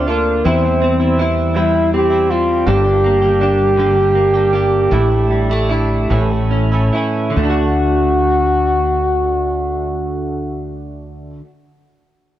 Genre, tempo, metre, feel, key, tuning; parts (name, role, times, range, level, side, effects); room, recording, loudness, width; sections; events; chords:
six-eight pop ballad; 46-54 BPM (dotted quarters); 6/8; straight; A4 = 437 Hz
warm French horn; melody; 0.0-10.7 s; Bb3 to G4; -16 LUFS; equal
direct-recorded clean electric guitar; accompaniment; 0.0-11.5 s; G2 to F#4; -20 LUFS; equal; double-tracked left and right
direct-recorded clean electric guitar; arpeggios; 0.0-11.5 s; G2 to G4; -23 LUFS; right 4 dB; lush chorus
mellow fretless electric bass; bass; 0.0-11.4 s; G1 to E2; -19 LUFS; equal; ensemble chorus
light reverb; worn, warbling old tape, cassette tape, warbly pitch drift; -13 LUFS; side -12 dB against mid
0.0-7.4 A section; 7.4-9.9 B section
slowing down 2.7-7.4
0.5 C/E; 2.7 Gm; 4.9 Asus4; 6.1 A; 7.4 D